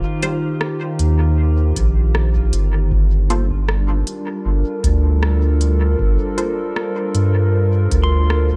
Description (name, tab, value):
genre	ambient dub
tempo	78 BPM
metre	4/4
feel	swing 54% on 16ths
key	G minor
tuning	A4 = 439 Hz
part	warbly tape-like pad	sustained chords	0.0-8.6 s	Eb3 to C5	-25 LUFS	equal	chorus, built-in reverb
part	pedal steel guitar	arpeggios	0.0-0.5, 8.0-8.6 s	F4 to C6	-34 LUFS	equal	tape echo
part	soft dub sub bass	bass	0.0-8.6 s	G1 to G2	-18 LUFS	equal	none
part	filtered dub chord stab	stabs	0.2-6.5 s	G3 to C5	-29 LUFS	equal	phaser, dub echo
part	organic electronic drum kit	drums	0.2-8.5 s	hi-hat, rim click	-30 LUFS	equal	small room ambience, dub echo
part	electronic kick drum	drums	1.8-8.6 s	none	-24 LUFS	equal	small room ambience
room	digital ambience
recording	echo-heavy mix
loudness	-18 LUFS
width	mono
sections	0.0-8.6 A section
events	none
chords	0.0 Eb69; 2.9 Gm11